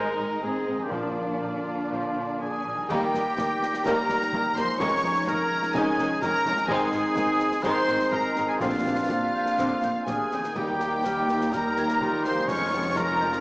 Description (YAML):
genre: cinematic, heroic adventure film score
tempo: 124 BPM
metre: 4/4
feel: straight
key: Eb major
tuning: A4 = 440 Hz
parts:
  - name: warm symphonic violin section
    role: melody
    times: 0.0-13.4 s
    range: D5 to Db6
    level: -31 LUFS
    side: equal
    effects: none
  - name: warm symphonic violin section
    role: second line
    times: 0.0-13.4 s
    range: Ab3 to G4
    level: -34 LUFS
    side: equal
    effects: none
  - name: warm symphonic viola section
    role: accompaniment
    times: 0.0-13.4 s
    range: D3 to C4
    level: -33 LUFS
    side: equal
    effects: none
  - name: dark trombone section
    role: sustained chords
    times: 0.0-13.4 s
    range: C3 to Bb3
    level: -35 LUFS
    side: right 1 dB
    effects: none
  - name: concert harp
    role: arpeggios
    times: 0.0-13.4 s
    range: Ab2 to Eb5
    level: -38 LUFS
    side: left 1 dB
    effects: none
  - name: warm trumpet section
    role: stabs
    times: 0.0-13.3 s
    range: F4 to Db5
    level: -29 LUFS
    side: equal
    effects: none
  - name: dark studio cello section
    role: bass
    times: 0.0-13.4 s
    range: Eb2 to D4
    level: -35 LUFS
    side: equal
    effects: none
  - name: dark studio double bass section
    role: bass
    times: 0.2-13.4 s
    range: F1 to Eb2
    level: -42 LUFS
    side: equal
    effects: none
  - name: timpani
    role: percussion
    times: 0.9-1.6, 8.6-11.2 s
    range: Bb2 to Eb3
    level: -39 LUFS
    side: equal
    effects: none
  - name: warm oboe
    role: second line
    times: 2.4-13.4 s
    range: F4 to Db5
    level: -32 LUFS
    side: equal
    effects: none
  - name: bright clarinet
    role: second line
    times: 2.9-13.4 s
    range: Db4 to F4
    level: -36 LUFS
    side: equal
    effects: none
  - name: concert flute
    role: second line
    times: 2.9-13.3 s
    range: F6 to C7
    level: -36 LUFS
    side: equal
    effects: none
  - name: mellow French horn section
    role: sustained chords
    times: 2.9-13.4 s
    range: Ab3 to Eb4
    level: -35 LUFS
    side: equal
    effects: none
  - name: clash cymbals, concert bass drum and concert snare drum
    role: drums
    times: 2.9-13.4 s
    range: none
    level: -37 LUFS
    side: equal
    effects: none
room: wet recital hall reverb, RT60 1.3 s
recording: small speaker sound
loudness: -23 LUFS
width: side -24 dB against mid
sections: 0.0-2.9 A section; 2.9-13.4 A section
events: none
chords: 0.0 Ab; 0.9 Bb; 2.9 Eb; 4.8 Dbadd9/F; 6.7 Ab; 8.6 Bbadd9; 10.6 Eb; 12.5 Dbadd9/F